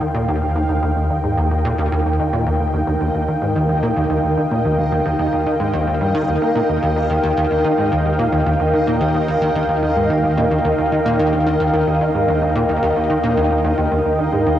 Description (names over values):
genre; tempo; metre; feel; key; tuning
ambient, sequencer-driven space music; 110 BPM; 4/4; straight; Eb major; A4 = 440 Hz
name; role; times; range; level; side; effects
sweeping resonant pad; sustained chords; 0.0-14.6 s; Eb4 to G5; -18 LUFS; equal; chorus, cassette tape
thumb-piano-like synth pluck; arpeggios; 0.0-14.4 s; D4 to Bb4; -32 LUFS; right 4 dB; none
plucky analog bass; riff; 0.0-14.6 s; Eb2 to Bb3; -19 LUFS; equal; lush chorus, cassette tape, ping-pong delay
analog drone; bass; 0.0-14.6 s; Eb2; -27 LUFS; equal; none
bubbling stepped-filter texture; texture; 0.0-14.6 s; Eb5; -35 LUFS; right 3 dB; chorus, built-in reverb, cassette tape
room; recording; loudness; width
wet spring reverb, RT60 2.5 s; home recording on cassette, nothing above 10.9 kHz; -15 LUFS; side -11 dB against mid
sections
0.0-14.6 A section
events
fade-in on synth texture 0.0-14.6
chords
0.0 Ebmaj7